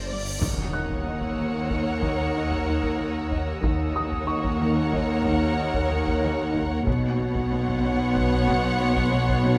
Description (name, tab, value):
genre	cinematic, suspense film score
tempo	93 BPM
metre	5/4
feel	straight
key	Eb phrygian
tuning	A4 = 440 Hz
part	warm symphonic violin section	melody	0.0-9.6 s	D5 to Gb5	-35 LUFS	equal	none
part	rich symphonic violin section	second line	0.0-9.6 s	Db5 to D5	-35 LUFS	equal	none
part	rich symphonic cello section	bass	0.0-9.6 s	Eb2 to B2	-32 LUFS	equal	none
part	rich symphonic double bass section	bass	0.0-9.6 s	G1 to Eb2	-31 LUFS	equal	none
part	swarming drone	drone	0.0-9.6 s	G1 to Eb2	-35 LUFS	equal	none
part	cymbal swell and impact	sound effects	0.0-3.6 s	none	-34 LUFS	equal	none
part	dark grand piano	texture	0.0-6.9 s	Db6 to Gb6	-37 LUFS	equal	none
part	rich symphonic violin section	texture	0.0-9.6 s	B5 to Bb6	-43 LUFS	equal	none
part	clear symphonic cello section	riff	0.1-9.6 s	B2 to Eb4	-33 LUFS	equal	none
part	rich chamber viola section	accompaniment	0.4-9.6 s	B3 to Bb4	-35 LUFS	equal	none
part	taiko ensemble	drums	0.4-9.6 s	none	-34 LUFS	equal	none
room	light reverb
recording	close, detailed microphones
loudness	-24 LUFS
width	mono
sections	0.4-9.6 A section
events	cymbal swell 0.0-0.4; impact 0.4-3.6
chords	0.4 Ebm7; 6.9 Bsus2